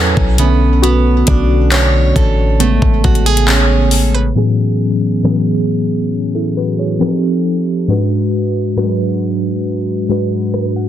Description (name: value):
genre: contemporary R&B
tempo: 68 BPM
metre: 4/4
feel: straight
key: A major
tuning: A4 = 439 Hz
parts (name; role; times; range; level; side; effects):
- muted felt-like synth keys; accompaniment; 0.0-10.9 s; G#2 to F#5; -15 LUFS; equal; chorus
- picked plugged-in steel-string acoustic guitar; arpeggios; 0.0-5.0 s; A2 to C#5; -17 LUFS; right 6 dB; ping-pong delay
- warm 808-style bass; bass; 0.0-4.3 s; A1 to E2; -13 LUFS; equal; none
- smooth R&B drum kit; drums; 0.2-10.7 s; handclaps, hi-hat, kick drum, rim click; -16 LUFS; left 1 dB; none
room: light reverb, digital ambience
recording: dense, heavily limited modern master, low-pass filter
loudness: -11 LUFS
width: side -11 dB against mid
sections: 0.0-4.4 A section; 4.4-10.9 B section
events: synth keys solo 0.0-4.4; filter sweep 4.4-10.9; synth keys fill 10.1-10.9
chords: 0.4 Bm9; 2.6 Amaj9; 4.4 Amaj13; 7.0 F9; 7.9 G#m7b5